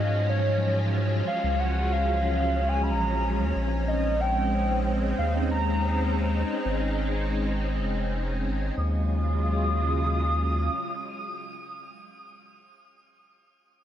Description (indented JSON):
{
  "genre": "IDM",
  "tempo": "92 BPM",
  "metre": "4/4",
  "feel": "straight",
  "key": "Eb minor",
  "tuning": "A4 = 435 Hz",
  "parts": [
    { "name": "warbly nostalgic lead", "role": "melody", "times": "0.0-12.1 s", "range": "Db5 to Eb6", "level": "-30 LUFS", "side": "equal", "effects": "tremolo, wide subtle chorus, shimmer reverb, tape echo" },
    { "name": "soft string machine", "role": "sustained chords", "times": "0.0-12.1 s", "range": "Db3 to F4", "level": "-29 LUFS", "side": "equal", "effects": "phaser, ensemble chorus, shimmer reverb" },
    { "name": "warm sub bass", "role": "bass", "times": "0.0-10.7 s", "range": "F1 to Ab2", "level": "-26 LUFS", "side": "equal", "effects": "none" }
  ],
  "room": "moderate echo chamber reverb, RT60 1.8 s, digital ambience",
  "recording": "echo-heavy mix",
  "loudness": "-24 LUFS",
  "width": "side -10 dB against mid",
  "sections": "0.0-8.8 A section; 8.8-11.4 B section",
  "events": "none",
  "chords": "0.0 Ebm11 (rootless); 3.6 Bbm11; 8.8 Ebm11"
}